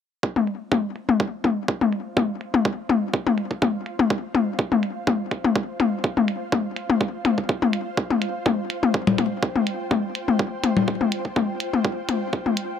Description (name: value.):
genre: minimal techno.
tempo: 124 BPM.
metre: 4/4.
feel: swing 54% on 16ths.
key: unclear.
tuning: A4 = 440 Hz.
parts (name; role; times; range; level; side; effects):
electronic kick drum; drums; 0.2-12.4 s; none; -24 LUFS; right 2 dB; high-pass filter on kick, high-pass filter on room.
ethereal airy pad; texture; 1.0-12.8 s; F4 to G5; -34 LUFS; right 1 dB; ensemble chorus, built-in reverb, sidechain pumping.
electronic toms and congas; percussion; 0.4-12.5 s; none; -21 LUFS; left 4 dB; ping-pong delay.
electronic hi-hat; drums; 0.5-12.7 s; none; -31 LUFS; right 4 dB; low-pass filter on hats, low-pass filter on room.
room: little or no reverb.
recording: none.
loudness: -21 LUFS.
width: side -8 dB against mid.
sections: 0.2-12.8 A section.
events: fade-in on ambient pad 0.2-12.8; filter sweep on drum 0.2-12.8.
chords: 0.2 F5.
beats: | 0.23 0.72 1.20 1.68 | 2.17 2.65 3.14 3.62 | 4.10 4.59 5.07 5.55 | 6.04 6.52 7.01 7.49 | 7.97 8.46 8.94 9.43 | 9.91 10.39 10.88 11.36 | 11.85 12.33.